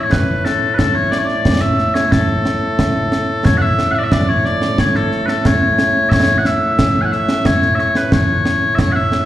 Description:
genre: scottish traditional, Scottish pipe music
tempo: 90 BPM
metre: 2/4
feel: straight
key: A major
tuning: A4 = 440 Hz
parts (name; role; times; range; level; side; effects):
- loud bright bagpipes; melody; 0.0-9.3 s; A2 to G#5; -15 LUFS; left 1 dB; slapback echo
- concert snare drum and concert bass drum; drums; 0.1-9.3 s; none; -16 LUFS; equal; slapback echo
room: moderate club ambience, RT60 0.5 s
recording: live gig heard through the venue's PA, recital hall reverb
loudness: -13 LUFS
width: side -13 dB against mid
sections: 0.0-3.4 A section; 3.4-9.3 B section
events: none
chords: none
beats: 0.12 | 0.78 1.45 | 2.12 2.78 | 3.45 4.12 | 4.78 5.45 | 6.12 6.78 | 7.45 8.12 | 8.78

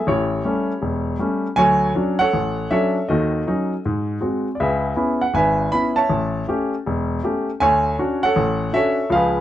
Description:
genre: solo jazz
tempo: 159 BPM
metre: 4/4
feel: swing 65% on 8ths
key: unclear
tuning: A4 = 440 Hz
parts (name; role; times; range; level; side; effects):
- warm baby grand piano; solo; 0.0-9.4 s; E1 to B5; -18 LUFS; equal; none
room: light reverb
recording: none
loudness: -18 LUFS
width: side -12 dB against mid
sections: 0.0-9.4 A section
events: none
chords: 0.1 A7; 1.6 Dmaj7; 3.1 D#m7b5; 3.8 G#7; 4.6 C#m7; 6.1 A7; 7.6 Dmaj7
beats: | 0.07 0.45 0.83 1.20 | 1.58 1.96 2.33 2.71 | 3.08 3.46 3.84 4.21 | 4.59 4.97 5.34 5.72 | 6.10 6.47 6.85 7.23 | 7.60 7.98 8.36 8.74 | 9.11

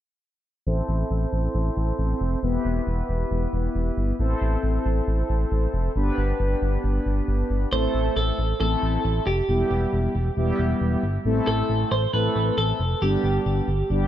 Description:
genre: synth-pop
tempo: 136 BPM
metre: 4/4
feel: straight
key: A minor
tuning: A4 = 438 Hz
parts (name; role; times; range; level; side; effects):
- mellow synth brass; accompaniment; 0.7-14.1 s; G3 to C5; -26 LUFS; left 1 dB; chorus, low-pass filter, tape echo
- smooth synth bass; bass; 0.7-14.1 s; E1 to A1; -24 LUFS; equal; none
- twelve-string electric guitar; melody; 7.7-14.1 s; G4 to C5; -26 LUFS; right 2 dB; tape echo
room: light reverb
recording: echo-heavy mix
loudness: -21 LUFS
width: side -12 dB against mid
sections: 0.7-7.7 A section; 7.7-14.1 B section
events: filter sweep on analog polysynth 0.7-7.7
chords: 0.7 Am; 2.4 Em; 4.2 Am; 6.0 G; 7.7 Am; 9.5 Em; 11.3 Am; 13.0 G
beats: | 0.67 1.11 1.55 1.99 | 2.43 2.87 3.31 3.75 | 4.19 4.63 5.08 5.52 | 5.96 6.40 6.84 7.28 | 7.72 8.16 8.61 9.05 | 9.49 9.93 10.37 10.81 | 11.25 11.69 12.13 12.58 | 13.02 13.46 13.90

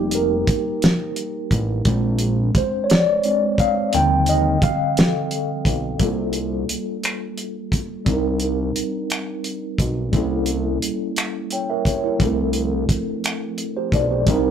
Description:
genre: slow six-eight R&B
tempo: 58 BPM (dotted quarters)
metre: 6/8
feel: straight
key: unclear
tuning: A4 = 440 Hz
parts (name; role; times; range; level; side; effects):
- mellow tine electric piano; accompaniment; 0.0-14.5 s; D3 to G5; -21 LUFS; equal; medium stereo tremolo
- fat analog bass; bass; 0.0-14.5 s; F1 to Eb2; -24 LUFS; right 1 dB; none
- cloth-damped thuddy drum kit; drums; 0.1-14.4 s; finger snaps, hi-hat, kick drum, snare drum; -20 LUFS; equal; none
room: moderate studio reverb, RT60 0.5 s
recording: rough rehearsal-room recording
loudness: -18 LUFS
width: side -8 dB against mid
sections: 0.0-6.0 A section; 6.0-14.3 B section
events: tine electric piano solo 0.0-6.0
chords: 0.0 F9sus4; 1.9 Bb7; 3.9 Ebmaj13; 6.0 Gm9/C; 8.1 Cm9; 10.1 A7b9/C; 12.2 Dm7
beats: 0.82 | 1.86 2.89 | 3.93 4.96 | 6.00 7.03 | 8.06 9.10 | 10.13 11.17 | 12.20 13.24 | 14.27

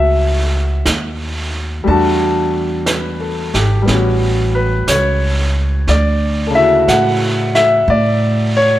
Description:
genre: jazz ballad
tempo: 60 BPM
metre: 4/4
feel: swing 66% on 8ths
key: unclear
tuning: A4 = 440 Hz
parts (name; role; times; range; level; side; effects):
- clear grand piano; accompaniment; 0.0-8.8 s; C#3 to A5; -15 LUFS; left 1 dB; none
- upright bass; bass; 0.0-8.8 s; G#1 to A2; -16 LUFS; equal; none
- vintage brush drum kit; drums; 0.9-8.8 s; brushed snare drum, hi-hat, snare drum; -22 LUFS; right 2 dB; none
room: moderate large studio reverb, RT60 1.1 s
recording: none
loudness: -12 LUFS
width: side -14 dB against mid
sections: 0.0-8.8 A section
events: none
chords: 0.0 F#m9; 1.9 Em11; 3.9 A13; 5.9 Dmaj7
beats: 0.85 | 1.86 2.87 3.87 4.87 | 5.87 6.88 7.88

